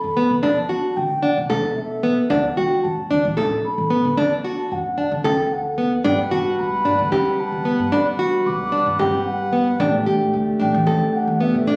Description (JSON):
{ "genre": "contemporary instrumental, chamber music in an uneven meter", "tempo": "224 BPM (eighths)", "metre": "7/8", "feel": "straight", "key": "D major", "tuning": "A4 = 437 Hz", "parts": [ { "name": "mellow hollow baroque flute", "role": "melody", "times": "0.0-11.8 s", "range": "D5 to D6", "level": "-27 LUFS", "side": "equal", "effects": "none" }, { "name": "upright bass", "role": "bass", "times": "0.0-11.8 s", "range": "G1 to D3", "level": "-30 LUFS", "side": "equal", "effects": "none" }, { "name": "nylon-string guitar", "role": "arpeggios", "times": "0.2-11.8 s", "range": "B3 to A4", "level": "-22 LUFS", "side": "equal", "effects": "none" }, { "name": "frame drum", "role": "percussion", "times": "0.4-11.8 s", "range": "none", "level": "-31 LUFS", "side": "equal", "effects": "none" }, { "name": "pipe organ, principal", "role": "sustained chords", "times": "6.1-11.8 s", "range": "G3 to F#5", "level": "-27 LUFS", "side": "equal", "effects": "none" } ], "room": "wet recital hall reverb, RT60 1.4 s", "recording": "recorded on a phone in the room, club reverb", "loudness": "-20 LUFS", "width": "mono", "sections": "0.0-11.8 A section", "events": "none", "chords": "0.0 Bm7; 2.3 D; 6.0 Gmaj7; 9.8 A7sus4" }